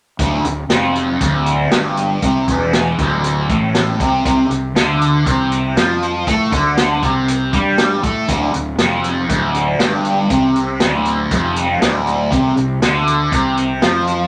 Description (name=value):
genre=psychedelic rock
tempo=119 BPM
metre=4/4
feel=straight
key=D minor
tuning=A4 = 440 Hz
part: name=fuzz guitar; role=riff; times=0.2-14.3 s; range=D2 to A3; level=-18 LUFS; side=equal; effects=distortion, phaser
part: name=fuzz fingered electric bass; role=bass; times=0.2-14.3 s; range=D1 to A2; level=-24 LUFS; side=equal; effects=overdrive
part: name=vintage drum kit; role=drums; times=0.2-14.2 s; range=hi-hat, kick drum, snare drum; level=-22 LUFS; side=equal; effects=none
room=wet studio reverb, RT60 0.9 s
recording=none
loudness=-16 LUFS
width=mono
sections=0.2-14.3 A section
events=none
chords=0.2 Dm; 4.3 C5; 8.3 Dm; 12.3 Amadd11 (rootless)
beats=| 0.19 0.70 1.21 1.72 | 2.23 2.73 3.24 3.75 | 4.25 4.76 5.26 5.77 | 6.28 6.78 7.29 7.79 | 8.29 8.80 9.30 9.80 | 10.31 10.81 11.31 11.82 | 12.32 12.82 13.33 13.83